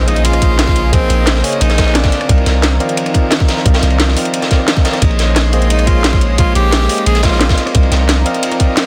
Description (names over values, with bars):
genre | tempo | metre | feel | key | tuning
liquid drum and bass | 176 BPM | 4/4 | straight | Bb minor | A4 = 440 Hz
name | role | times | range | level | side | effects
clear tenor saxophone | melody | 0.0-2.5, 5.5-7.7 s | C4 to Ab4 | -22 LUFS | equal | delay
tine electric piano | accompaniment | 0.0-8.9 s | Ab3 to F5 | -22 LUFS | equal | digital delay
lush unison pad | sustained chords | 0.0-8.9 s | Db3 to C6 | -26 LUFS | equal | chorus
long sustained 808-style bass | bass | 0.0-8.2 s | Bb1 to C2 | -16 LUFS | equal | none
impact | sound effects | 0.0-0.9 s | none | barely audible | none | none
crunchy breakbeat drum kit | drums | 0.1-8.9 s | ride cymbal, snare drum | -23 LUFS | equal | high-pass filter on cymbals, high-pass filter on snare, high-pass filter on room
drum and bass drum kit | drums | 0.1-8.8 s | hi-hat, rim click, snare drum | -20 LUFS | equal | none
electronic kick drum | drums | 0.4-8.7 s | none | -15 LUFS | equal | none
room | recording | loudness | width
small room ambience | dense, heavily limited modern master | -13 LUFS | mono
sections
0.0-8.9 A section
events
impact 0.0-0.9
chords
0.0 Bbm11; 2.1 Cm11; 5.0 Bbm11; 7.6 Cm11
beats
0.25 0.59 | 0.93 1.27 1.61 1.95 | 2.29 2.63 2.98 3.32 | 3.66 4.00 4.34 4.68 | 5.02 5.36 5.70 6.04 | 6.38 6.72 7.07 7.41 | 7.75 8.09 8.43 8.77